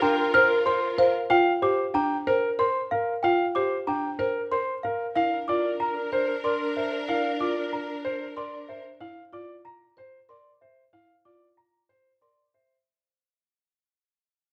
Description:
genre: classical, minimalist pattern music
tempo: 187 BPM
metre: 6/4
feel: straight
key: unclear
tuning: A4 = 440 Hz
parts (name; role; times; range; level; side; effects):
- warm grand piano; melody; 0.0-12.7 s; Bb4 to Bb5; -31 LUFS; equal; none
- dark clarinet; second line; 0.0-1.1, 5.2-8.8 s; Bb4; -34 LUFS; equal; none
- rich studio string section; sustained chords; 0.0-1.1, 5.2-8.8 s; D4 to Bb4; -35 LUFS; equal; none
- buzzing marimba with medium mallets; arpeggios; 0.0-12.4 s; D4 to C5; -30 LUFS; equal; none
- small celesta; arpeggios; 0.0-12.7 s; E5 to F6; -30 LUFS; equal; none
room: moderate recital hall reverb, RT60 1.5 s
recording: close, detailed microphones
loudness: -25 LUFS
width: mono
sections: 0.0-12.9 A section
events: fade-out 0.5-12.9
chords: 0.0 Gm7; 5.2 Bbadd9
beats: 0.02 0.34 0.67 0.99 | 1.31 1.63 1.95 2.27 2.59 2.91 | 3.23 3.55 3.87 4.19 4.51 4.84 | 5.16 5.48 5.80 6.12 6.44 6.76 | 7.08 7.40 7.72 8.04 8.37 8.69 | 9.01 9.33 9.65 9.97 10.29 10.61 | 10.93 11.25 11.57 11.89 12.21 12.54

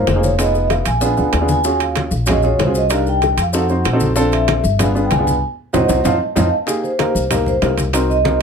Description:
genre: Afro-Cuban jazz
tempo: 191 BPM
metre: 4/4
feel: straight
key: unclear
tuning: A4 = 440 Hz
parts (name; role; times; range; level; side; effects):
- vibraphone with soft mallets; melody; 0.0-8.4 s; Bb4 to A5; -19 LUFS; right 1 dB; none
- dark baby grand piano; accompaniment; 0.0-8.4 s; Bb3 to C5; -19 LUFS; equal; none
- upright bass; bass; 0.0-8.4 s; F1 to F2; -19 LUFS; equal; none
- bongos; percussion; 0.1-8.4 s; none; -26 LUFS; left 9 dB; none
- congas; percussion; 0.1-8.4 s; none; -24 LUFS; left 1 dB; none
- maracas; percussion; 0.1-8.4 s; none; -30 LUFS; left 5 dB; none
- timbales; percussion; 0.1-8.4 s; none; -24 LUFS; right 6 dB; none
room: little or no reverb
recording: close, detailed microphones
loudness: -14 LUFS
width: side -6 dB against mid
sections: 0.0-6.7 A section; 6.7-8.4 B section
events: band accent 5.4-6.7; drum fill 5.7-6.7; vibraphone solo 6.7-8.4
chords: 0.4 Fm7b5; 1.0 Bb7b9; 1.7 Ebm11; 2.9 Cm7; 3.5 F7b9; 4.2 Bbmaj9; 4.8 G7b9; 5.4 Cdim; 6.1 F7; 6.7 Cm7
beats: 0.08 | 0.40 0.71 1.02 1.34 | 1.65 1.97 2.28 2.60 | 2.91 3.22 3.54 3.85 | 4.17 4.48 4.80 5.11 | 5.42 5.74 6.05 6.37 | 6.68 7.00 7.31 7.63 | 7.94 8.26

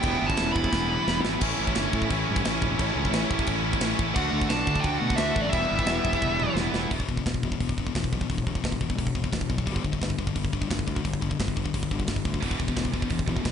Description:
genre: heavy metal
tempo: 174 BPM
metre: 4/4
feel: straight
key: E dorian, E minor from 6.9 s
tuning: A4 = 440 Hz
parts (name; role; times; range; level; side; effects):
- high-gain lead guitar; melody; 0.0-1.2, 4.1-6.5 s; D5 to B5; -29 LUFS; equal; distortion, tape echo
- high-gain lead guitar; second line; 0.0-1.2, 4.2-6.6 s; F#3 to E4; -34 LUFS; right 3 dB; distortion
- crunchy overdriven guitar; riff; 0.0-6.9 s; A2 to F#4; -30 LUFS; equal; none
- heavy high-gain guitar; riff; 0.0-6.9, 12.4-13.5 s; E2 to F#4; -32 LUFS; right 15 dB; distortion
- scooped high-gain guitar; riff; 0.0-13.5 s; E2 to F#4; -31 LUFS; left 11 dB; distortion
- fuzz fingered electric bass; bass; 0.0-13.5 s; E1 to D3; -31 LUFS; equal; overdrive
- tight metal drum kit; drums; 0.0-13.5 s; china cymbal, crash cymbal, hi-hat, kick drum, snare drum, toms; -29 LUFS; equal; none
room: little or no reverb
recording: nothing above 10.5 kHz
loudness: -24 LUFS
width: side -8 dB against mid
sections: 0.0-6.9 A section; 6.9-13.5 B section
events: drum fill 0.7-1.4, 6.2-6.9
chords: 0.0 Em; 1.4 A; 4.2 D; 5.5 Em; 6.9 E5; 9.7 G5; 12.4 E5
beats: | 0.04 0.38 0.72 1.07 | 1.41 1.76 2.10 2.44 | 2.79 3.13 3.47 3.82 | 4.16 4.50 4.85 5.19 | 5.54 5.88 6.22 6.57 | 6.91 7.26 7.60 7.95 | 8.29 8.64 8.98 9.33 | 9.67 10.02 10.36 10.71 | 11.05 11.40 11.74 12.09 | 12.43 12.78 13.12 13.46

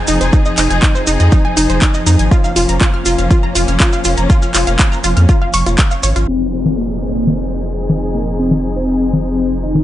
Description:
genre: melodic techno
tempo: 121 BPM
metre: 4/4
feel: straight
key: F minor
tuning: A4 = 439 Hz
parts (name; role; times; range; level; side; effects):
- rich symphonic string section; sustained chords; 0.0-9.8 s; F3 to Ab4; -22 LUFS; left 2 dB; sidechain pumping
- wide unison pluck; arpeggios; 0.0-6.2 s; Eb4 to F6; -18 LUFS; equal; sidechain pumping, dub echo
- swarming drone; drone; 0.0-6.3 s; F2 to F3; -26 LUFS; right 1 dB; built-in reverb, sidechain pumping
- round analog bass; bass; 0.1-9.8 s; F1 to F2; -16 LUFS; equal; sidechain pumping
- house drum kit; drums; 0.1-9.8 s; congas, handclaps, hi-hat; -18 LUFS; left 1 dB; sidechain pumping on hats, sidechain pumping on perc
- maracas; percussion; 0.1-6.3 s; none; -24 LUFS; right 2 dB; none
- electronic kick drum; drums; 0.3-5.9 s; none; -12 LUFS; equal; none
- fat analog lead; melody; 6.3-9.8 s; Bb3 to Eb4; -18 LUFS; left 2 dB; analog chorus, sidechain pumping, tape echo
- downlifter; sound effects; 6.3-9.8 s; none; -29 LUFS; left 2 dB; none
room: light reverb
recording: low-pass filter, nothing above 10.4 kHz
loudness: -11 LUFS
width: side -13 dB against mid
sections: 0.0-6.3 A section; 6.3-9.8 B section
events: filter sweep 6.3-9.8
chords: 0.0 Fm7; 2.3 Bbm/F; 6.3 Fm7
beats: | 0.33 0.83 1.32 1.82 | 2.31 2.81 3.31 3.80 | 4.30 4.79 5.29 5.79 | 6.28 6.78 7.27 7.77 | 8.26 8.76 9.26 9.75

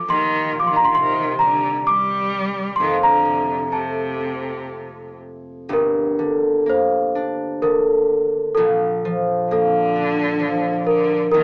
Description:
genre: celtic folk, Celtic slow air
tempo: 58-68 BPM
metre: 3/4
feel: rubato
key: G minor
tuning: A4 = 442 Hz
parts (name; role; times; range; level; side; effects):
- celesta; melody; 0.0-11.4 s; A4 to D6; -22 LUFS; equal; none
- rich cello; second line; 0.0-5.2, 9.5-11.4 s; C3 to G3; -27 LUFS; equal; none
- concert harp; accompaniment; 0.0-11.4 s; Eb1 to D4; -25 LUFS; equal; none
room: moderate studio reverb, RT60 0.5 s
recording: band playing live in one room, small speaker sound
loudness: -19 LUFS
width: mono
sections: 0.0-5.7 A section; 5.7-11.4 B section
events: none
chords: 0.1 Cm7/Eb; 2.8 F; 5.7 Gm; 8.6 Bbmaj7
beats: | 0.06 0.94 1.86 | 2.78 3.71 4.69 | 5.69 6.65 7.61 | 8.56 9.48 10.40 | 11.31

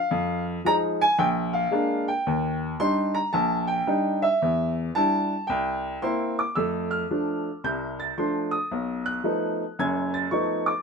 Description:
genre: solo jazz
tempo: 112 BPM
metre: 4/4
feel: swing 66% on 8ths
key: unclear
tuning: A4 = 440 Hz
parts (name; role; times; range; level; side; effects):
- bright upright piano; solo; 0.0-10.8 s; F#1 to A6; -23 LUFS; equal; none
room: light reverb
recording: minimal, uncompressed stereo recording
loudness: -23 LUFS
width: side -5 dB against mid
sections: 0.0-6.6 A section; 6.6-10.8 B section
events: none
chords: 0.1 Fm7; 1.2 Bb7; 2.3 Ebmaj7; 4.4 Em7; 5.5 C7; 6.6 F6; 8.7 B7#11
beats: | 0.10 0.64 1.18 1.72 | 2.25 2.79 3.33 3.87 | 4.41 4.94 5.48 6.02 | 6.56 7.09 7.63 8.17 | 8.71 9.25 9.79 10.32

